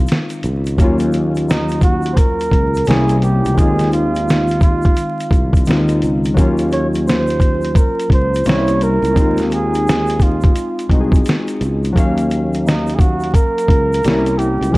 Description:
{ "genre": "lo-fi hip hop", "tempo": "86 BPM", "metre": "4/4", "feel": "swing 61% on 16ths", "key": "Eb dorian", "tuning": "A4 = 435 Hz", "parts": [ { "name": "breathy flugelhorn", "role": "melody", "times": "0.0-14.8 s", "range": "Eb4 to Db5", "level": "-20 LUFS", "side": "right 2 dB", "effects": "low-pass filter, analog delay" }, { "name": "warbly lo-fi synth keys", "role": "accompaniment", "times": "0.0-14.8 s", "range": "Eb2 to F5", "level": "-19 LUFS", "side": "left 2 dB", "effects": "chorus, low-pass filter" }, { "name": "sustaining fretless electric bass", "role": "bass", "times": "0.0-14.8 s", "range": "C2 to Eb2", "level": "-19 LUFS", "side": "equal", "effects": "none" }, { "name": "dusty soul sampler-style drum kit", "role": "drums", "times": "0.1-14.8 s", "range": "hi-hat, kick drum, snare drum", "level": "-15 LUFS", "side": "equal", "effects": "none" }, { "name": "egg shaker", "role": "percussion", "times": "0.1-14.7 s", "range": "none", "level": "-43 LUFS", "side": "right 3 dB", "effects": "none" } ], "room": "light reverb, digital ambience", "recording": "dark, warm production, vinyl crackle", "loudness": "-13 LUFS", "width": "side -21 dB against mid", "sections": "0.0-14.8 A section", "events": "none", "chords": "0.0 Fm7/Eb; 0.8 Ebm9; 2.9 C7b9; 3.6 Fm7/Eb; 6.4 Ebm9; 8.5 C7b9; 9.2 Fm7/Eb; 12.0 Ebm9; 14.0 C7b9", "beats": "0.09 | 0.79 1.49 2.19 2.88 | 3.58 4.28 4.98 5.67 | 6.37 7.07 7.77 8.47 | 9.16 9.86 10.56 11.26 | 11.95 12.65 13.35 14.05 | 14.74" }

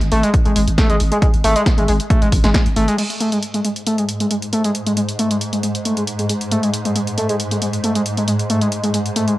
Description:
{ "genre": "driving peak-time techno", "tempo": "136 BPM", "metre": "4/4", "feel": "straight", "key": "unclear", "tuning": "A4 = 441 Hz", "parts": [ { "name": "growling 808-style bass", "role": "bass", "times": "0.0-2.9 s", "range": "G#1", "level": "-20 LUFS", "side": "equal", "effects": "tube saturation, sidechain pumping, low-pass filter" }, { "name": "punchy analog drum machine", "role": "drums", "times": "0.0-9.4 s", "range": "crash cymbal, hi-hat, snare drum", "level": "-24 LUFS", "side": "equal", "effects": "sidechain pumping on hats, sidechain pumping on cymbals" }, { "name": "overdriven synth lead", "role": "riff", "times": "0.1-9.3 s", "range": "G#3 to A3", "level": "-18 LUFS", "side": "equal", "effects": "tube saturation, sidechain pumping, analog delay" }, { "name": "electronic kick drum", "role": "drums", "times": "0.3-2.6 s", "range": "none", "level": "-16 LUFS", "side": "equal", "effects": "none" }, { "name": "swarming drone", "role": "drone", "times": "3.6-9.4 s", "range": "G#2", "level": "-23 LUFS", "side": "right 1 dB", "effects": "built-in reverb, sidechain pumping" } ], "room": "light reverb, digital ambience", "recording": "dry, gritty hardware recording, cassette tape", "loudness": "-15 LUFS", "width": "side -17 dB against mid", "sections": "0.0-3.0 A section; 3.0-9.4 B section", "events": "none", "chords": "none", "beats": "0.34 0.78 | 1.22 1.66 2.10 2.54 | 2.98 3.43 3.87 4.31 | 4.75 5.19 5.63 6.07 | 6.51 6.96 7.40 7.84 | 8.28 8.72 9.16" }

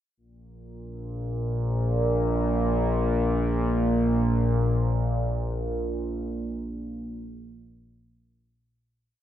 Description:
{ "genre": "ambient", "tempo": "free time", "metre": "none", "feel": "none", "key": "unclear", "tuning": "A4 = 439 Hz", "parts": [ { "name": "analog drone", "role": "solo", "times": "0.8-9.1 s", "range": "Bb1 to Bb2", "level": "-24 LUFS", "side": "equal", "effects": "chorus, phaser, analog delay" } ], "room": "wet echo chamber reverb, RT60 2.3 s", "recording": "echo-heavy mix", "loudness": "-23 LUFS", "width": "side -11 dB against mid", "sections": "0.2-9.0 A section", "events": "fade-out 4.6-9.0", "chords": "none", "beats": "free time" }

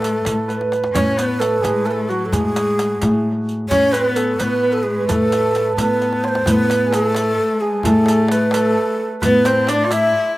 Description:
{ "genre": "Persian modal ensemble", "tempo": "87 BPM (dotted quarters)", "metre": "6/8", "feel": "straight", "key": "A dastgah mahur, A avaz esfahan from 6.5 s", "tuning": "A4 = 440 Hz", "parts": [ { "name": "breathy mellow ney", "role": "melody", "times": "0.0-10.3 s", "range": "F#4 to E5", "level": "-20 LUFS", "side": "equal", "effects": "slapback echo" }, { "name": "santur", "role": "second line", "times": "0.0-10.4 s", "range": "F#4 to E5", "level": "-22 LUFS", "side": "right 4 dB", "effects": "slapback echo" }, { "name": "warm cello", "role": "second line", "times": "0.0-10.3 s", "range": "F#3 to F4+49c", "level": "-23 LUFS", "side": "left 3 dB", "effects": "slapback echo" }, { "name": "upright bass", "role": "bass", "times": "0.0-10.1 s", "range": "A2", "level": "-21 LUFS", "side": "left 1 dB", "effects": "none" }, { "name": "riq", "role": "percussion", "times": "0.0-10.0 s", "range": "none", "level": "-27 LUFS", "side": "right 3 dB", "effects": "none" }, { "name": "tombak", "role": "percussion", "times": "0.0-10.0 s", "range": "none", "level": "-28 LUFS", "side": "left 1 dB", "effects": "none" } ], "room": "little or no reverb", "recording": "recorded outdoors, with no room sound", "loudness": "-15 LUFS", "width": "side -17 dB against mid", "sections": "0.0-6.5 A section; 6.5-10.4 B section", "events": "drum fill 0.5-0.9, 6.0-6.5", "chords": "none", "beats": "0.26 | 0.95 1.64 | 2.33 3.02 | 3.71 4.40 | 5.09 5.78 | 6.47 7.16 | 7.85 8.54 | 9.23 9.92" }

